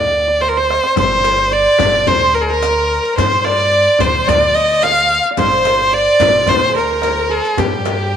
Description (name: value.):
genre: Persian modal ensemble.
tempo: 109 BPM.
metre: 4/4.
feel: straight.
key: unclear.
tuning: A4 = 442 Hz.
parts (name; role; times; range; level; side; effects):
rich violin; melody; 0.0-8.2 s; G4 to F5; -13 LUFS; equal; none.
santur; second line; 0.0-8.2 s; G4 to G5; -21 LUFS; right 9 dB; none.
upright bass; bass; 0.0-8.2 s; G1 to G2; -24 LUFS; equal; none.
tombak; percussion; 0.2-8.2 s; none; -25 LUFS; right 6 dB; none.
frame drum; percussion; 0.4-8.0 s; none; -22 LUFS; left 11 dB; none.
rich symphonic violin section; second line; 1.0-8.2 s; G4 to F5; -21 LUFS; equal; none.
riq; percussion; 1.0-8.0 s; none; -27 LUFS; left 15 dB; none.
room: wet spring reverb, RT60 1.6 s, studio reverb.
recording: 1960s-style stereo with parts hard left and right.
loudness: -11 LUFS.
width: side -8 dB against mid.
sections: 0.0-8.2 A section.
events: drum fill 0.4-1.0.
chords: none.